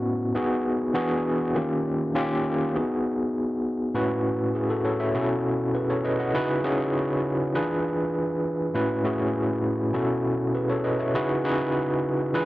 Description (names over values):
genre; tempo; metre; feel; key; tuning
soul; 100 BPM; 4/4; straight; C# minor; A4 = 440 Hz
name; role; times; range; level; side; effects
overdriven tine electric piano; solo; 0.0-12.5 s; A2 to F#5; -23 LUFS; equal; medium tremolo
room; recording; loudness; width
light reverb; dry, close 1970s-style studio recording; -23 LUFS; side -17 dB against mid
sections
0.0-3.9 A section; 3.9-12.5 B section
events
none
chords
0.4 G#m7; 1.0 E9; 1.6 D#7; 2.7 G#m7; 3.9 A69; 5.1 B9sus4; 6.3 C#m11; 7.5 E7b9; 8.7 A69; 9.9 B9sus4; 11.1 C#m11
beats
0.35 0.95 | 1.55 2.15 2.75 3.35 | 3.95 4.54 5.14 5.74 | 6.34 6.94 7.54 8.14 | 8.74 9.34 9.94 10.54 | 11.13 11.73 12.33